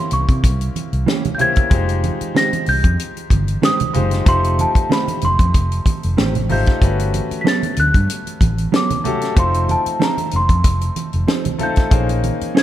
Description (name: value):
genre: lush 1970s-style soul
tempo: 94 BPM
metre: 4/4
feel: swing 54% on 16ths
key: unclear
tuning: A4 = 439 Hz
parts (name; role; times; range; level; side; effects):
- worn celesta; melody; 0.0-12.6 s; A5 to B6; -21 LUFS; equal; slapback echo
- clear grand piano; accompaniment; 0.0-12.6 s; Ab3 to C5; -25 LUFS; left 4 dB; none
- vintage muted fingered electric bass; bass; 0.1-12.4 s; F1 to C3; -19 LUFS; equal; none
- tight funk drum kit; drums; 0.1-12.6 s; hi-hat, kick drum, snare drum; -17 LUFS; equal; none
- congas; percussion; 0.4-12.4 s; none; -27 LUFS; right 5 dB; none
- mellow electric guitar; riff; 1.1-12.6 s; Eb3 to C5; -24 LUFS; right 5 dB; spring reverb
room: light reverb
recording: dark, warm production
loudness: -15 LUFS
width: side -12 dB against mid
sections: 0.0-12.6 A section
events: none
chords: 0.0 C7b9; 1.7 Fm9; 4.3 F9; 6.8 Gmaj9#11; 9.4 F7; 11.9 Bbm11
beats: 0.43 1.07 | 1.71 2.35 2.99 3.63 | 4.26 4.90 5.54 6.18 | 6.82 7.45 8.09 8.73 | 9.37 10.00 10.64 11.28 | 11.92 12.55